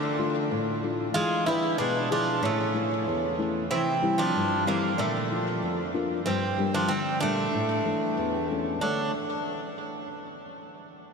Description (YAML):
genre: greek folk, Greek bouzouki band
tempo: 94 BPM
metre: 2/4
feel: straight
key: D minor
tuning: A4 = 441 Hz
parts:
  - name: Greek bouzouki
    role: melody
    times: 0.0-9.1 s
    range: A3 to F4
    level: -29 LUFS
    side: right 2 dB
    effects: ping-pong delay
  - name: Greek bouzouki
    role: second line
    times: 0.0-9.1 s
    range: C#3 to A3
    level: -30 LUFS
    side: right 2 dB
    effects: ping-pong delay
  - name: nylon-string guitar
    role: accompaniment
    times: 0.0-9.1 s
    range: E2 to C#5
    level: -29 LUFS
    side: left 3 dB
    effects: none
room: wet huge ambient reverb, RT60 7.2 s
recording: dreamy mix soaked in reverb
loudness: -24 LUFS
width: side -5 dB against mid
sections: 0.0-8.8 A section; 8.8-10.1 B section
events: none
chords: 0.0 Dm; 1.1 E7; 2.4 A; 3.7 C; 5.0 Bb; 6.3 Gm; 7.5 A; 8.8 D5